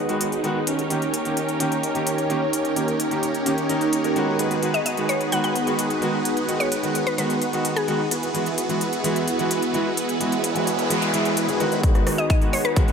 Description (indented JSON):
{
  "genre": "EDM, festival progressive house",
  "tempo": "129 BPM",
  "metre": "4/4",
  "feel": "straight",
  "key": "G# minor",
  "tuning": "A4 = 438 Hz",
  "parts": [
    { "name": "lush unison pad", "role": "sustained chords", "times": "0.0-12.9 s", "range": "D#3 to G4", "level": "-29 LUFS", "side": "right 1 dB", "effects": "chorus, sidechain pumping" },
    { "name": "supersaw chords", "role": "riff", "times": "0.0-12.9 s", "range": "B3 to G#5", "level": "-25 LUFS", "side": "right 1 dB", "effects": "phaser, cassette tape, sidechain pumping, low-pass filter, ping-pong delay" },
    { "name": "bright grand piano", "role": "accompaniment", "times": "0.1-12.9 s", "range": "D#3 to A#4", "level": "-26 LUFS", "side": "right 1 dB", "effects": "sidechain pumping, ping-pong delay" },
    { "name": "big-room dance drum kit", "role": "drums", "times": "0.1-12.9 s", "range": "hi-hat, rim click", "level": "-30 LUFS", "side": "left 1 dB", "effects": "none" },
    { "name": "mallet-like synth pluck", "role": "melody", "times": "4.7-8.1, 12.2-12.8 s", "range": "G#4 to F#5", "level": "-27 LUFS", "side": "left 2 dB", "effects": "chorus, vintage 12-bit sampler grit, ping-pong delay" },
    { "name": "noise sweep and riser", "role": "sound effects", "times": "10.2-12.9 s", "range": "none", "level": "-29 LUFS", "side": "equal", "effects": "none" },
    { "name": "saturated sub bass", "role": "bass", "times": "11.8-12.9 s", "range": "none", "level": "barely audible", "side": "none", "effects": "none" },
    { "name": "electronic kick drum", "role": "drums", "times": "11.8-12.9 s", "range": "none", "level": "-18 LUFS", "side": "equal", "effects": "none" }
  ],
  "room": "moderate lush hall reverb, RT60 1.7 s",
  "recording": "none",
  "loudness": "-20 LUFS",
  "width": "side -6 dB against mid",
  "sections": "0.0-11.8 A section; 11.8-12.9 B section",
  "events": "filter sweep on supersaw synth 0.0-11.8; noise sweep 10.2-11.8; build-up 11.8-12.9; filter sweep 11.8-12.9",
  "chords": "0.0 G#m7; 0.7 D#7; 4.4 B6; 8.1 Eadd9; 11.8 G#m7"
}